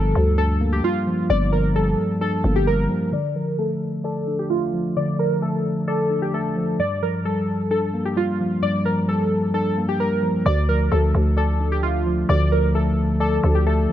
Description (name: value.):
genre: hip hop, trap.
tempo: 131 BPM.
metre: 4/4.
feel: half-time.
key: D minor.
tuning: A4 = 440 Hz.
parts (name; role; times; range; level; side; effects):
warbly lo-fi synth keys; melody; 0.0-13.9 s; F4 to D5; -24 LUFS; equal; chorus, low-pass filter.
mellow tine electric piano; accompaniment; 0.0-13.9 s; G2 to D5; -23 LUFS; left 1 dB; low-pass filter.
growling 808-style bass; bass; 0.0-2.9, 10.5-13.9 s; G1 to D2; -20 LUFS; equal; none.
room: light reverb.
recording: none.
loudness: -19 LUFS.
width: side -11 dB against mid.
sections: 0.0-3.1 A section; 3.1-10.5 B section; 10.5-13.9 A section.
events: filter sweep 3.1-10.5.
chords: 0.0 Gm7; 3.1 Dm; 6.8 Gm7; 10.5 Dm.